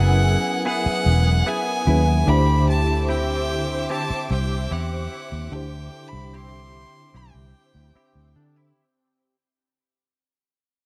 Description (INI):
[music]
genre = R&B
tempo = 74 BPM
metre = 4/4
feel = straight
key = unclear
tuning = A4 = 440 Hz
[part]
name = clear violin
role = melody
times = 0.0-8.4 s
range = F#5 to C6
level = -30 LUFS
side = equal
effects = delay
[part]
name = FM electric piano with tremolo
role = accompaniment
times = 0.0-8.8 s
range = D3 to C5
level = -30 LUFS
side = equal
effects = phaser
[part]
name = warm studio string section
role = sustained chords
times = 0.0-8.7 s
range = G4 to D6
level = -34 LUFS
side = equal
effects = none
[part]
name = direct-recorded clean electric guitar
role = arpeggios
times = 0.0-9.3 s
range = D3 to G#4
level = -32 LUFS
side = equal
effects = ensemble chorus
[part]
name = vintage muted fingered electric bass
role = bass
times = 0.0-8.7 s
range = E1 to D3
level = -23 LUFS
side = equal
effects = none
[sound]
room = studio ambience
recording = dark, warm production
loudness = -21 LUFS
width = mono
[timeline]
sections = 0.0-8.8 A section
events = fade-out 0.0-8.8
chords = 0.0 F#9sus4; 2.3 D9sus4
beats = 0.65 1.46 | 2.27 3.08 3.90 4.71 | 5.52 6.33 7.14 7.95